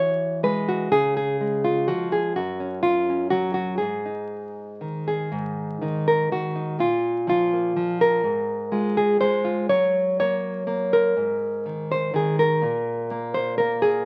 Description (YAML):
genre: folk, solo fingerstyle acoustic guitar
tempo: 124 BPM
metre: 3/4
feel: rubato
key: Ab mixolydian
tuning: A4 = 440 Hz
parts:
  - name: nylon-string guitar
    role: solo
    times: 0.0-14.1 s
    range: Gb2 to Db5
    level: -23 LUFS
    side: equal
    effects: none
room: moderate club reverb, RT60 0.6 s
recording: very old 78 rpm record, vinyl crackle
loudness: -23 LUFS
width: mono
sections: 0.0-5.3 A section; 5.3-14.1 B section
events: none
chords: 0.0 Eadd9; 0.9 Db; 2.4 Gb5; 3.8 Ab5; 6.8 Bb5; 8.2 Ab69; 9.7 Gb; 11.2 Ab5; 12.6 N.C.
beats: 0.43 | 0.92 1.40 1.88 | 2.37 2.85 3.33 | 3.81 4.30 4.81 | 5.32 5.82 6.31 | 6.79 7.28 7.76 | 8.24 8.72 9.21 | 9.69 10.18 10.68 | 11.17 11.66 12.15 | 12.63 13.11 13.59